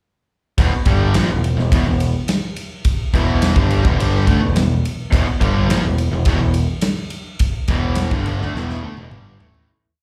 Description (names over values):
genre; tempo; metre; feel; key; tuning
classic rock; 105 BPM; 4/4; straight; unclear; A4 = 439 Hz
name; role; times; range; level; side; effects
distorted electric guitar; riff; 0.6-9.7 s; E2 to A3; -27 LUFS; equal; overdrive, slapback echo
raw garage guitar; riff; 0.6-9.7 s; E2 to A3; -26 LUFS; equal; overdrive, slapback echo
picked electric bass; bass; 0.6-9.7 s; E1 to D2; -21 LUFS; equal; none
big rock drum kit; drums; 0.6-9.7 s; kick drum, ride cymbal, snare drum, toms; -22 LUFS; equal; none
room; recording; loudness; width
light reverb; live gig heard through the venue's PA, club reverb; -18 LUFS; mono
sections
0.6-9.7 riff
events
fade-out 7.4-9.7; drum fill 8.6-9.7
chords
0.6 E5